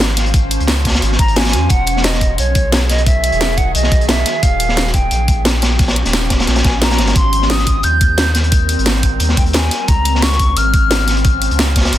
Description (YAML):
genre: liquid drum and bass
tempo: 176 BPM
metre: 4/4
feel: swing 53% on 16ths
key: Ab major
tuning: A4 = 441 Hz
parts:
  - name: shimmering ambient pad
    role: sustained chords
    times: 0.0-12.0 s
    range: D#3 to C5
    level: -24 LUFS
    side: left 1 dB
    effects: chorus, built-in reverb, sidechain pumping
  - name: warm sub bass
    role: bass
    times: 0.0-12.0 s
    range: Eb1 to F2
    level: -17 LUFS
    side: equal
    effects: tube saturation
  - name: crunchy breakbeat drum kit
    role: drums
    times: 0.0-12.0 s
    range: hi-hat, snare drum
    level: -20 LUFS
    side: equal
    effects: high-pass filter on hats, high-pass filter on snare, high-pass filter on room
  - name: drum and bass drum kit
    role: drums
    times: 0.0-12.0 s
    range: hi-hat, snare drum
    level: -18 LUFS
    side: equal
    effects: none
  - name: electronic kick drum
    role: drums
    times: 0.3-11.8 s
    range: none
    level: -14 LUFS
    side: equal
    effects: none
  - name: hollow concert flute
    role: melody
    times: 1.2-11.1 s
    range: Db5 to G6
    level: -20 LUFS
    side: equal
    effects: ping-pong delay
room: small room reverb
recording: dense, heavily limited modern master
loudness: -12 LUFS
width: side -13 dB against mid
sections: 0.0-12.0 A section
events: none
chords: 0.0 Dbmaj7; 1.7 Emaj9; 4.4 Eb9; 7.2 Abmaj9; 9.7 Dbmaj7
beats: 0.00 | 0.34 0.68 1.02 1.36 | 1.70 2.04 2.38 2.72 | 3.06 3.40 3.75 4.09 | 4.43 4.77 5.11 5.45 | 5.79 6.13 6.47 6.81 | 7.16 7.50 7.84 8.18 | 8.52 8.86 9.20 9.54 | 9.88 10.22 10.56 10.90 | 11.25 11.59 11.93